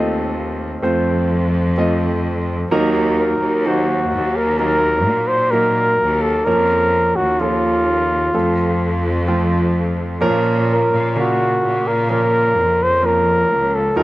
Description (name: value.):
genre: pop.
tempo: 64 BPM.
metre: 4/4.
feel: straight.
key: Bb harmonic minor.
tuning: A4 = 438 Hz.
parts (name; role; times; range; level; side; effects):
warm flugelhorn; melody; 0.0-14.0 s; F4 to C5; -17 LUFS; equal; none.
clear grand piano; accompaniment; 0.0-14.0 s; Bb2 to Eb5; -20 LUFS; right 1 dB; slapback echo.
clear chamber cello section; bass; 0.0-14.0 s; Db2 to Bb2; -20 LUFS; equal; none.
room: little or no reverb.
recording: recorded outdoors, with no room sound.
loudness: -15 LUFS.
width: side -17 dB against mid.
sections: 0.0-14.0 A section.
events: none.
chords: 0.0 F; 2.7 Ebm; 6.5 Bbm; 8.3 F; 10.2 Bbm.